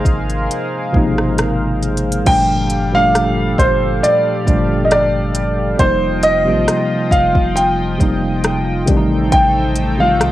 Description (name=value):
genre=contemporary R&B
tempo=68 BPM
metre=4/4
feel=swing 54% on 16ths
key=G minor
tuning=A4 = 441 Hz
part: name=warm concert grand piano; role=melody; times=0.0-10.3 s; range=C5 to C6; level=-16 LUFS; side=equal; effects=cassette tape
part: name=mellow tine electric piano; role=accompaniment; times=0.0-10.3 s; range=Bb2 to F4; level=-18 LUFS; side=equal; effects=medium stereo tremolo, cassette tape
part: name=chorused pulse-width pad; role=sustained chords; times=0.0-10.3 s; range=F3 to G5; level=-23 LUFS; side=equal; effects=cassette tape
part: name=long sustained 808-style bass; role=bass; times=0.1-10.3 s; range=F1 to C2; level=-22 LUFS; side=equal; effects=none
part: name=smooth R&B drum kit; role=drums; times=0.1-10.3 s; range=crash cymbal, hi-hat, kick drum, rim click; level=-18 LUFS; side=equal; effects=overdrive, cassette tape
room=light reverb, digital ambience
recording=home recording on cassette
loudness=-13 LUFS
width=side -14 dB against mid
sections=0.0-2.3 A section; 2.3-10.3 B section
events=none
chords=0.0 Ab6; 2.3 Gm7; 5.8 F9sus4; 8.9 Am7b5